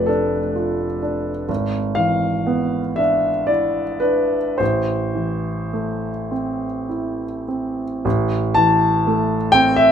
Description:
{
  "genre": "classical, romantic nocturne for solo piano",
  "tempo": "33-44 BPM (dotted quarters)",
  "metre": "12/8",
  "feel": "rubato",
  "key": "A minor",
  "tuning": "A4 = 441 Hz",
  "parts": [
    { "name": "warm concert grand piano", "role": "solo", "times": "0.0-9.9 s", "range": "F1 to A5", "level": "-17 LUFS", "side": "equal", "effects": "none" }
  ],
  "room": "light reverb",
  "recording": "none",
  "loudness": "-18 LUFS",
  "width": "side -8 dB against mid",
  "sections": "0.0-8.0 A section; 8.0-9.9 B section",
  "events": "none",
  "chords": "0.0 Dm/F; 1.5 E7/G#; 4.6 Am"
}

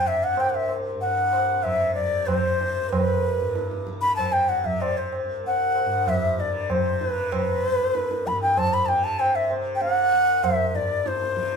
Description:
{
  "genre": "indian classical, Hindustani",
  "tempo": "95 BPM",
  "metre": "7/4",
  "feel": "straight",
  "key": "C raga yaman",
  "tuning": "A4 = 442 Hz",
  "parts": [
    { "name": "breathy bright bansuri", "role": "melody", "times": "0.0-11.6 s", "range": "B4 to B5", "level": "-22 LUFS", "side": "left 1 dB", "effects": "none" },
    { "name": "tanpura", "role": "drone", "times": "0.0-11.6 s", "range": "C2 to C3", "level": "-33 LUFS", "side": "equal", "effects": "none" },
    { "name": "tabla", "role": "percussion", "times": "0.4-11.6 s", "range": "none", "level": "-27 LUFS", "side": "right 1 dB", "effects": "none" }
  ],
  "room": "wet stone room reverb, RT60 1.0 s",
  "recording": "band playing live in one room",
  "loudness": "-21 LUFS",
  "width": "side -6 dB against mid",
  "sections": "0.0-11.6 A section",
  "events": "speeding up 0.0-11.6",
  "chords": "none"
}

